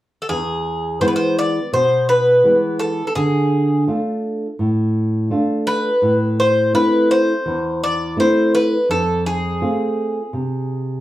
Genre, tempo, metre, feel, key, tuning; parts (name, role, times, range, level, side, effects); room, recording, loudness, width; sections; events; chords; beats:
greek folk, Greek bouzouki band; 84 BPM; 4/4; straight; E phrygian dominant; A4 = 440 Hz
Greek bouzouki; melody; 0.2-11.0 s; G#4 to D5; -18 LUFS; equal
nylon-string guitar; accompaniment; 0.3-11.0 s; E2 to F4; -19 LUFS; equal
wet studio reverb, RT60 0.5 s; heard from further back in the room; -16 LUFS; side -15 dB against mid
0.3-11.0 A section
0.3 E; 3.2 Dm; 6.0 Am; 8.9 F
| 0.29 1.01 1.72 2.44 | 3.16 3.88 4.59 5.31 | 6.03 6.75 7.46 8.18 | 8.90 9.62 10.34